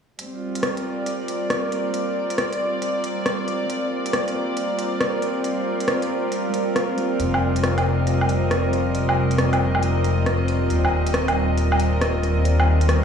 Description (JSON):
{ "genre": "future garage", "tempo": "137 BPM", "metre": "4/4", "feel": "swing 66% on 16ths", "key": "unclear", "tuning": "A4 = 440 Hz", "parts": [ { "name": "warm studio string section", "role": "sustained chords", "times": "0.2-13.0 s", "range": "G3 to Eb5", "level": "-23 LUFS", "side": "right 1 dB", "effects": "none" }, { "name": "organic electronic drum kit", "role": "drums", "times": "0.2-13.0 s", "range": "hi-hat, rim click, woodblock", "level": "-25 LUFS", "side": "equal", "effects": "small room reverb" }, { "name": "drifting glass-harmonics texture", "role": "texture", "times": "0.8-13.0 s", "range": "Bb3 to Bb4", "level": "-30 LUFS", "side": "left 2 dB", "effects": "chorus, built-in reverb" }, { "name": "dark detuned saw bass", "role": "bass", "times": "7.2-13.0 s", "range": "Eb1 to F1", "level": "-20 LUFS", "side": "left 1 dB", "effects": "none" } ], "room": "light reverb, digital ambience", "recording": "played on a big sound system in a bare room, cassette tape, stone room reverb, small room ambience", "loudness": "-19 LUFS", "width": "side -7 dB against mid", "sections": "0.2-13.0 A section", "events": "none", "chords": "0.2 Gm7; 7.2 Fsus2; 10.7 Eb69" }